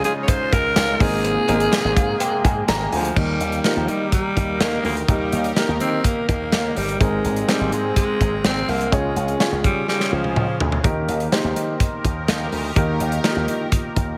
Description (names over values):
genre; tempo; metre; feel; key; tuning
1980s-style pop; 125 BPM; 4/4; straight; unclear; A4 = 441 Hz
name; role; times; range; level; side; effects
breathy alto saxophone; melody; 0.0-10.6 s; F3 to Db5; -26 LUFS; equal; none
warm baby grand piano; accompaniment; 0.0-14.2 s; Ab2 to Bb5; -27 LUFS; equal; none
sweeping resonant pad; sustained chords; 0.0-14.2 s; C3 to Bb4; -32 LUFS; equal; chorus
slap bass with an envelope filter; bass; 0.0-14.1 s; G1 to Eb3; -28 LUFS; equal; none
modern studio drum kit; drums; 0.0-14.1 s; crash cymbal, hi-hat, kick drum, snare drum, tambourine, toms; -24 LUFS; equal; gated reverb
cowbell; percussion; 0.3-2.8 s; none; -38 LUFS; equal; none
room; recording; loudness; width
light reverb, small room ambience; none; -20 LUFS; mono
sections
0.0-3.2 A section; 3.2-14.2 B section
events
grand piano fill 1.7-3.2; drum fill 9.9-10.8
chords
0.0 Dbadd9; 1.0 Abadd9; 3.2 Eb; 7.0 Abadd9; 8.9 Db; 10.8 Eb